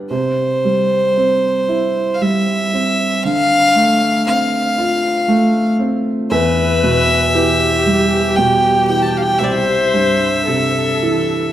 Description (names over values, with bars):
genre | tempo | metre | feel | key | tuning
celtic folk, Celtic slow air | 58 BPM | 3/4 | rubato | unclear | A4 = 440 Hz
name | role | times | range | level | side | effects
clear upright piano | accompaniment | 0.0-11.5 s | C2 to G4 | -17 LUFS | right 2 dB | none
clear fiddle | melody | 0.1-11.5 s | C5 to A5 | -16 LUFS | left 1 dB | none
rich viola | second line | 6.3-11.5 s | G4 to C5 | -18 LUFS | left 3 dB | none
room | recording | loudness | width
wet recital hall reverb, RT60 1.9 s | recorded in a church or concert hall | -13 LUFS | side -12 dB against mid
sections
0.1-11.5 A section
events
none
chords
0.1 C; 3.2 Dm7; 6.3 Em; 9.4 C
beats
| 0.10 1.17 2.21 | 3.23 4.25 5.27 | 6.30 7.34 8.37 | 9.40 10.47